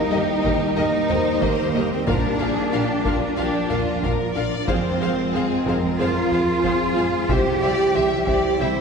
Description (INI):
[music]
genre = cinematic, hybrid orchestral and electronic film score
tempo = 92 BPM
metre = 4/4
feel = straight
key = F dorian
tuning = A4 = 440 Hz
[part]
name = warm symphonic violin section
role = second line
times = 0.0-8.8 s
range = F4 to E5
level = -29 LUFS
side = left 4 dB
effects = none
[part]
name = dark French horn section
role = sustained chords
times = 0.0-8.8 s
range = G3 to E4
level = -29 LUFS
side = left 3 dB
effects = none
[part]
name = granular cloud pad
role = sustained chords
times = 0.0-8.8 s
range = E3 to G5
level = -29 LUFS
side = equal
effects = built-in reverb
[part]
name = rich symphonic cello section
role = bass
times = 0.0-8.8 s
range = Bb3 to G4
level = -22 LUFS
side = right 2 dB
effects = none
[part]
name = clear symphonic violin section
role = melody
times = 0.1-8.7 s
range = Eb5 to F5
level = -33 LUFS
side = left 4 dB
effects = none
[part]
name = rich symphonic viola section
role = accompaniment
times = 0.1-8.7 s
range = F4 to C5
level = -31 LUFS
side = left 1 dB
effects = none
[part]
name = tight sequenced synth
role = arpeggios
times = 0.1-8.8 s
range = C3 to F4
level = -31 LUFS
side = equal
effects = chorus
[part]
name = rich symphonic double bass section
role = bass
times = 0.1-8.7 s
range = Bb1 to F2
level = -29 LUFS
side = right 2 dB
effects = none
[part]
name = felt-muted upright piano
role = texture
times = 0.1-8.8 s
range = Bb4 to G5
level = -34 LUFS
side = left 3 dB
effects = none
[part]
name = taiko ensemble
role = drums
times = 0.4-8.8 s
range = none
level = -30 LUFS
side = equal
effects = none
[sound]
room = wet concert hall reverb, RT60 2.1 s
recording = heard from further back in the room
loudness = -18 LUFS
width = side -5 dB against mid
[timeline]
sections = 0.0-8.8 A section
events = none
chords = 0.0 Eb; 2.1 Bb; 4.7 Fm; 7.3 C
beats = 0.12 0.77 1.42 | 2.07 2.73 3.38 4.03 | 4.68 5.33 5.99 6.64 | 7.29 7.94 8.60